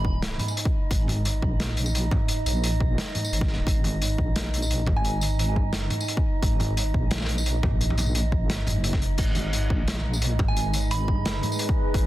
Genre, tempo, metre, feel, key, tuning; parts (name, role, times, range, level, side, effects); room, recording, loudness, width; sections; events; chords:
half-time drum and bass; 174 BPM; 4/4; half-time; G# minor; A4 = 440 Hz
soft synth bell; melody; 0.0-0.4, 5.0-5.2, 10.5-11.4 s; G#5 to B5; -35 LUFS; right 4 dB; chorus, phaser, vintage 12-bit sampler grit, dub echo
deep soft wobble bass; bass; 0.0-12.1 s; F#1 to A#1; -26 LUFS; equal; chorus, tube saturation
electronic kick drum; drums; 0.0-12.0 s; -25 LUFS; equal
metallic inharmonic drone; texture; 0.0-12.1 s; D#4; -34 LUFS; right 3 dB; chorus, built-in reverb
crunchy breakbeat drum kit; drums; 0.2-12.0 s; crash cymbal, hi-hat, snare drum, tambourine, toms; -28 LUFS; equal
deep dark ambient pad; sustained chords; 10.2-12.1 s; G#3 to B4; -35 LUFS; left 1 dB; chorus, built-in reverb, vintage 12-bit sampler grit, sidechain pumping
little or no reverb; dense, heavily limited modern master; -22 LUFS; side -15 dB against mid
0.0-12.1 A section
0.0 G#madd9